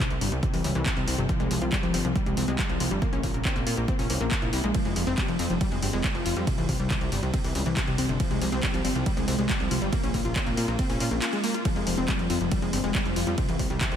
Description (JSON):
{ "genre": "uplifting trance", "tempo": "139 BPM", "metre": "4/4", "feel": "straight", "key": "unclear", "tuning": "A4 = 436 Hz", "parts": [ { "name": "wide unison pluck", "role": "arpeggios", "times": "0.0-13.9 s", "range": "C3 to Bb4", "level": "-28 LUFS", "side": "left 2 dB", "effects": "sidechain pumping, analog delay" }, { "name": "electronic kick drum", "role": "drums", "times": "0.0-13.9 s", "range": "none", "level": "-28 LUFS", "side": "right 1 dB", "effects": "overdrive" }, { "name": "punchy analog drum machine", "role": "drums", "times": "0.0-14.0 s", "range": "handclaps, hi-hat, ride cymbal", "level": "-32 LUFS", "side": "equal", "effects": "sidechain pumping on hats, sidechain pumping on cymbals" }, { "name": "plucky analog bass", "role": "bass", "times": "0.1-14.0 s", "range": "F1 to Bb2", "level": "-29 LUFS", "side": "right 1 dB", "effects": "sidechain pumping" } ], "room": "moderate cathedral reverb, RT60 6.4 s", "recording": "dreamy mix soaked in reverb", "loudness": "-24 LUFS", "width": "side -9 dB against mid", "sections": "0.0-14.0 A section", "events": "kick drops out 11.2-11.7", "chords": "0.0 C5; 1.3 N.C.; 6.5 C5; 8.2 N.C.", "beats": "0.00 0.43 0.86 | 1.29 1.72 2.16 2.59 | 3.02 3.45 3.88 4.31 | 4.75 5.18 5.61 6.04 | 6.47 6.90 7.34 7.77 | 8.20 8.63 9.06 9.49 | 9.93 10.36 10.79 11.22 | 11.65 12.08 12.52 12.95 | 13.38 13.81" }